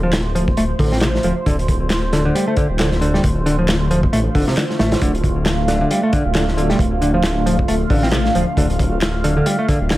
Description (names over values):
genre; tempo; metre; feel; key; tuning
breakbeat, breaks; 135 BPM; 4/4; swing 57% on 16ths; D minor; A4 = 440 Hz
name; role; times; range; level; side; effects
phased analog pad; sustained chords; 0.0-10.0 s; D3 to F5; -22 LUFS; equal; phaser, chorus, sidechain pumping
modern bright picked electric bass; riff; 0.0-10.0 s; C3 to C4; -20 LUFS; equal; overdrive, digital delay
detuned saw bass; bass; 0.0-10.0 s; D1 to A1; -20 LUFS; equal; none
crunchy breakbeat drum kit; drums; 0.1-10.0 s; hi-hat, kick drum, snare drum; -20 LUFS; equal; none
electronic handclaps; drums; 0.1-10.0 s; none; -27 LUFS; equal; overdrive
room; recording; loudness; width
light reverb; none; -15 LUFS; side -16 dB against mid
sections
0.0-10.0 A section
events
none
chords
0.0 Dm7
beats
0.13 0.57 1.02 | 1.46 1.91 2.35 2.80 | 3.24 3.69 4.13 4.57 | 5.02 5.46 5.91 6.35 | 6.80 7.24 7.68 8.13 | 8.57 9.02 9.46 9.91